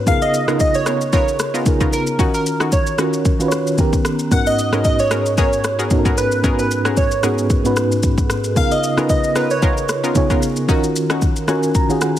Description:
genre	amapiano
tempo	113 BPM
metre	4/4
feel	swing 55% on 16ths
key	G# dorian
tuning	A4 = 440 Hz
part	mellow FM electric piano	accompaniment	0.0-12.2 s	G#2 to A#5	-19 LUFS	right 1 dB	chorus, tremolo
part	glassy wavetable pluck	melody	0.1-12.2 s	A#4 to F#5	-20 LUFS	right 1 dB	chorus, slapback echo
part	deep house drum kit	drums	0.1-12.2 s	kick drum, rim click, shaker	-19 LUFS	equal	none
part	analog pluck	stabs	0.5-11.6 s	B3 to A#4	-24 LUFS	left 2 dB	chorus, slapback echo
room	little or no reverb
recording	heavily compressed radio sound, multiband compression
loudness	-15 LUFS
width	side -12 dB against mid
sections	0.0-12.2 A section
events	FM electric piano fill 11.2-12.2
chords	0.1 C#13; 2.2 D#m7; 3.8 D#7b13; 4.3 G#m11; 8.6 C#13; 10.7 D#m7

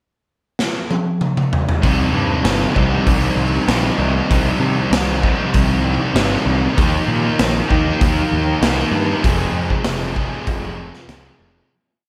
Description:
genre	rock, shoegaze and dream pop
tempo	97 BPM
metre	4/4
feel	straight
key	C minor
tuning	A4 = 440 Hz
part	raw garage drum kit	drums	0.6-11.2 s	hi-hat, kick drum, snare drum, toms	-22 LUFS	equal	none
part	crunchy overdriven guitar	riff	1.8-11.7 s	F2 to Ab4	-24 LUFS	equal	reverse reverb
part	thick fuzz guitar	riff	1.8-11.7 s	F2 to Eb4	-24 LUFS	equal	distortion, ensemble chorus
part	fuzz picked electric bass	bass	1.8-11.6 s	F1 to C3	-23 LUFS	equal	overdrive
room	light reverb, small room ambience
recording	none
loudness	-17 LUFS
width	mono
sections	0.0-1.8 pickup bar; 1.8-11.7 verse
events	drum fill 0.6-1.8; fade-out 9.2-11.7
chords	0.0 N.C.; 1.8 Cm; 6.8 Eb; 9.2 Fm

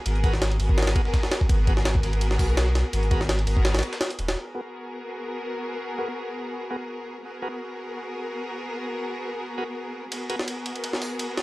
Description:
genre	drum and bass, jungle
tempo	167 BPM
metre	4/4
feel	swing 54% on 16ths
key	G# minor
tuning	A4 = 442 Hz
part	rich studio string section	sustained chords	0.0-11.4 s	B3 to A#4	-31 LUFS	left 1 dB	low-pass filter
part	saturated sub bass	bass	0.1-4.4 s	D#1 to B1	-24 LUFS	equal	none
part	breakbeat sampler-style drum kit	drums	0.1-4.4 s	hi-hat, snare drum	-39 LUFS	equal	none
part	jungle sampler-style drum kit	drums	0.1-4.4, 10.1-11.4 s	hi-hat, kick drum, ride cymbal, snare drum	-24 LUFS	equal	small room ambience
part	bright tonewheel organ	stabs	0.2-10.4 s	B3 to A#4	-35 LUFS	equal	overdrive, stopped rotary speaker, low-pass filter, dub echo
room	digital ambience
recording	dry, gritty hardware recording, cassette tape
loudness	-24 LUFS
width	side -20 dB against mid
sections	0.0-4.4 A section; 4.4-11.4 B section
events	drop 0.0-4.4; kick drops out 3.6-4.4; filter sweep on tonewheel organ 4.4-11.4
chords	0.0 G#m9

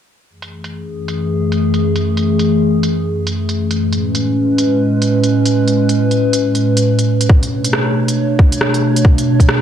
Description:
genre	future garage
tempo	137 BPM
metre	4/4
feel	swing 60% on 16ths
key	F# minor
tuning	A4 = 440 Hz
part	warbly tape-like pad	sustained chords	0.6-9.6 s	F#2 to C#5	-14 LUFS	equal	chorus, built-in reverb, sidechain pumping
part	garage drum kit	drums	0.4-9.6 s	hi-hat, rim click	-21 LUFS	right 1 dB	low-pass filter on hats, low-pass filter on snare, low-pass filter on room
part	electronic kick drum	drums	7.3-9.5 s	none	-10 LUFS	equal	none
room	light reverb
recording	cassette tape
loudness	-12 LUFS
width	side -9 dB against mid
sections	0.3-9.6 A section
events	filter sweep on drum 0.3-9.6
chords	0.3 F#m9; 3.8 Amaj9; 7.3 Bm9

